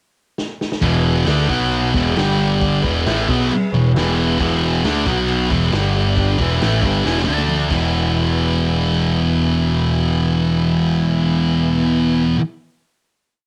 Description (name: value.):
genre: garage rock duo or trio.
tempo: 135 BPM.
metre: 4/4.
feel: straight.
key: E mixolydian.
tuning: A4 = 439 Hz.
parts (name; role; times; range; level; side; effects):
vintage drum kit; drums; 0.4-7.8 s; crash cymbal, kick drum, snare drum, toms; -28 LUFS; equal; cassette tape.
overdriven combo organ; sustained chords; 0.8-12.2 s; F#4 to A5; -31 LUFS; equal; cassette tape.
thick fuzz guitar; riff; 0.8-12.4 s; E2 to D4; -18 LUFS; equal; distortion, cassette tape.
growling picked electric bass; bass; 0.8-12.3 s; E1 to D2; -26 LUFS; equal; overdrive.
room: light reverb.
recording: home recording on cassette.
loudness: -17 LUFS.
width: mono.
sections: 0.0-0.8 pickup bar; 0.8-7.9 riff; 7.9-11.5 final hit.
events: drum fill 0.4-0.8, 7.0-7.9.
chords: 0.0 N.C.; 0.8 E; 1.5 B5; 1.9 E; 2.2 G5; 2.8 E; 5.1 B5; 5.5 E; 5.7 G5; 6.4 E; 7.3 D5; 7.7 E.